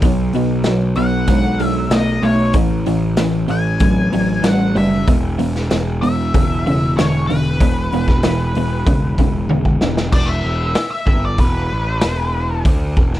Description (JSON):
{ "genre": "blues rock power trio and southern rock", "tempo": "95 BPM", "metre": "4/4", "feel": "straight", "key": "E mixolydian", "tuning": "A4 = 440 Hz", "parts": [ { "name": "crunchy overdriven guitar", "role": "riff", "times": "0.0-10.1 s", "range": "E2 to A3", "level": "-18 LUFS", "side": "equal", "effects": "none" }, { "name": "fuzz picked electric bass", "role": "bass", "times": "0.0-13.2 s", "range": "E1 to D2", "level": "-20 LUFS", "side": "equal", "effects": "overdrive" }, { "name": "raw garage drum kit", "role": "drums", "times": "0.0-13.2 s", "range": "crash cymbal, hi-hat, kick drum, snare drum, toms", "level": "-17 LUFS", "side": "equal", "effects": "none" }, { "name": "octave-fuzz lead guitar", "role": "melody", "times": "1.0-12.6 s", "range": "B4 to G#5", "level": "-23 LUFS", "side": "left 2 dB", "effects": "wah, distortion" } ], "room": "small room ambience", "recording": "none", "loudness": "-14 LUFS", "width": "side -14 dB against mid", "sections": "0.0-10.1 A section; 10.1-13.2 B section", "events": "drum fill 9.5-10.1; lead electric guitar solo 10.1-13.2", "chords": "0.0 B5; 2.6 A5; 5.1 E5", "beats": "| 0.02 0.66 1.29 1.92 | 2.55 3.18 3.81 4.45 | 5.08 5.71 6.34 6.97 | 7.60 8.23 8.87 9.50 | 10.13 10.76 11.39 12.03 | 12.66" }